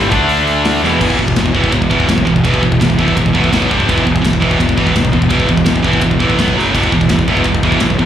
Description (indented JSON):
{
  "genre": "heavy metal",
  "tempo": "167 BPM",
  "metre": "4/4",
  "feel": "straight",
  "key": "E minor",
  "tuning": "A4 = 440 Hz",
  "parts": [
    { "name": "cranked stack guitar", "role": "riff", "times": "0.0-1.0 s", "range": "E2 to D4", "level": "-20 LUFS", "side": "left 2 dB", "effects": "overdrive, slapback echo" },
    { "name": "high-gain distorted guitar", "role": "riff", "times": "0.0-8.1 s", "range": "E2 to D4", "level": "-14 LUFS", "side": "right 4 dB", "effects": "distortion" },
    { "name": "scooped high-gain guitar", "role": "riff", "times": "0.0-8.1 s", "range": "E2 to D4", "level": "-18 LUFS", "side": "left 11 dB", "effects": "distortion, slapback echo" },
    { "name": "fuzz picked electric bass", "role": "bass", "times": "0.0-8.1 s", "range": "E1 to D2", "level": "-18 LUFS", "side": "equal", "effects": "overdrive" },
    { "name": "tight metal drum kit", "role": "drums", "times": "0.1-8.1 s", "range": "crash cymbal, hi-hat, kick drum, ride cymbal, snare drum, splash cymbal", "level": "-17 LUFS", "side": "left 1 dB", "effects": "none" }
  ],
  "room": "small room ambience",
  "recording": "live gig heard through the venue's PA, club reverb",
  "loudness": "-10 LUFS",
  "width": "side -10 dB against mid",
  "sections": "0.0-1.0 A section; 1.0-8.1 B section",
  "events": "drum fill 0.8, 6.6",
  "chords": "0.1 D5; 0.8 E5; 3.5 B5; 3.7 G5; 3.9 E5; 6.4 B5; 6.6 F#5; 6.7 E5"
}